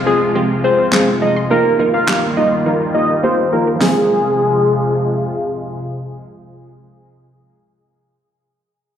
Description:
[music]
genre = dance-pop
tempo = 104 BPM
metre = 4/4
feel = straight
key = F minor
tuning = A4 = 438 Hz
[part]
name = lush unison pad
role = sustained chords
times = 0.0-6.9 s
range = C3 to F4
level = -21 LUFS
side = equal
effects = chorus, phaser, low-pass filter, plate reverb
[part]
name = fat analog lead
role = melody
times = 0.1-5.5 s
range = Ab4 to F5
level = -16 LUFS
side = equal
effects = phaser, low-pass filter, plate reverb, slapback echo, tape echo
[part]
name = glassy wavetable pluck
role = accompaniment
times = 0.1-7.6 s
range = Ab3 to Bb4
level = -18 LUFS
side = equal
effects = chorus, low-pass filter, plate reverb, slapback echo
[part]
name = wide unison pluck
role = arpeggios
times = 0.2-7.6 s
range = F3 to C6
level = -26 LUFS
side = right 1 dB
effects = phaser, low-pass filter, plate reverb, slapback echo, tape echo
[part]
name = pop drum kit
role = drums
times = 0.9-3.9 s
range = handclaps, hi-hat, snare drum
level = -17 LUFS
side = equal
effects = overdrive, slapback echo
[sound]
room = wet club reverb, RT60 0.7 s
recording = live gig heard through the venue's PA, recital hall reverb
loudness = -13 LUFS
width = side -9 dB against mid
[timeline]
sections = 0.0-3.8 A section; 3.8-6.1 B section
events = filter sweep 0.0-3.8; drums muted 3.2-3.8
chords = 0.0 Fm; 1.5 Ebadd9; 3.8 Fm

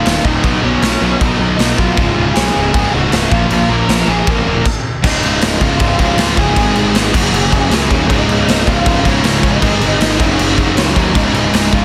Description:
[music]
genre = punk rock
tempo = 157 BPM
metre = 4/4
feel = straight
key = Db major from 5.0 s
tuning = A4 = 435 Hz
[part]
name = bluesy overdriven lead guitar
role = melody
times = 0.0-11.8 s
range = Db4 to Bb5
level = -22 LUFS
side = equal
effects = distortion
[part]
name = crunchy overdriven guitar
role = riff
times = 0.0-11.8 s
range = Db2 to Cb4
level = -25 LUFS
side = equal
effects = none
[part]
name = distorted electric guitar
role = riff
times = 0.0-11.8 s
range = Db2 to Cb4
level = -22 LUFS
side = equal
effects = overdrive
[part]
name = sludgy distorted guitar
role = riff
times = 0.0-11.8 s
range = Db2 to Ab4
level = -22 LUFS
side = equal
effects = none
[part]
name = fuzz picked electric bass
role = bass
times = 0.1-11.8 s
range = Db1 to Eb2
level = -21 LUFS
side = equal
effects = overdrive
[part]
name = raw garage drum kit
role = drums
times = 0.1-11.8 s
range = crash cymbal, kick drum, snare drum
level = -17 LUFS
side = equal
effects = none
[sound]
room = little or no reverb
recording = dense, heavily limited modern master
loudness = -13 LUFS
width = mono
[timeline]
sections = 0.0-5.0 A section; 5.0-11.8 B section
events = stop 4.7-5.0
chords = 0.4 Cb; 2.0 Db; 3.3 Bb5; 5.0 Db; 6.6 Ab; 7.1 Gb; 8.1 Db; 9.6 Ab; 10.2 Gb; 11.2 Db

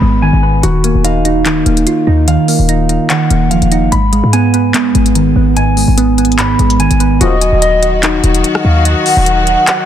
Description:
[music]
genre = hip hop, trap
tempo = 146 BPM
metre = 4/4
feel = half-time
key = Eb minor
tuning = A4 = 440 Hz
[part]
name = soft electric-piano-like synth keys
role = accompaniment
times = 0.0-7.2 s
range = Ab2 to F4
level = -13 LUFS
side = right 2 dB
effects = chorus, phaser
[part]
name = mellow electric guitar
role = arpeggios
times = 0.0-9.9 s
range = Cb4 to Cb6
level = -16 LUFS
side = right 1 dB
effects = tape echo
[part]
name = short 808-style bass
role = bass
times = 0.0-9.6 s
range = Eb1 to Ab2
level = -13 LUFS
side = left 1 dB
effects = none
[part]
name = trap drum kit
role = drums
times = 0.6-9.8 s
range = handclaps, hi-hat, rim click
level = -18 LUFS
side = left 2 dB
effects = none
[part]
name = warm velvety synth lead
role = second line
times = 7.2-9.9 s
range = Eb5 to Gb5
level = -14 LUFS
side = right 1 dB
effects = chorus
[part]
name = clear studio string section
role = sustained chords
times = 7.2-9.9 s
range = Eb3 to Gb4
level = -17 LUFS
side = left 3 dB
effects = none
[part]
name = dark brass ensemble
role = stabs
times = 7.2-7.3 s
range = Bb1 to F3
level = -21 LUFS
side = left 7 dB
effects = none
[sound]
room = digital ambience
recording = dense, heavily limited modern master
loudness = -9 LUFS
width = side -10 dB against mid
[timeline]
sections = 0.0-7.2 A section; 7.2-9.9 B section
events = break 0.0-0.6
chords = 0.0 Abm; 0.6 Ebmadd9; 3.9 Abm; 7.2 Ebm

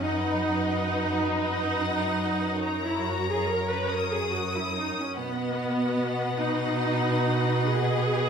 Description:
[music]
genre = classical, slow romantic movement for string orchestra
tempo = 45-52 BPM (dotted quarters)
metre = 12/8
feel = rubato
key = B major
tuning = A4 = 440 Hz
[part]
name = clear symphonic violin section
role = melody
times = 0.0-8.3 s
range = F#5 to D#6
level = -34 LUFS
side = left 6 dB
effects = none
[part]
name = warm symphonic violin section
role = second line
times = 0.0-8.3 s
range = A#4 to D#5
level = -32 LUFS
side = left 4 dB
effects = none
[part]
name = rich symphonic viola section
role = accompaniment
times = 0.0-8.3 s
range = B3 to B4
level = -28 LUFS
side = right 1 dB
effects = none
[part]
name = rich symphonic cello section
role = bass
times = 0.0-8.3 s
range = F#2 to B2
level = -30 LUFS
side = right 3 dB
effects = none
[sound]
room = moderate concert hall reverb, RT60 2.2 s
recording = none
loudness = -24 LUFS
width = side -7 dB against mid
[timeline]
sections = 0.0-8.3 A section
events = none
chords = 0.0 B/F#; 2.6 F#; 5.2 B

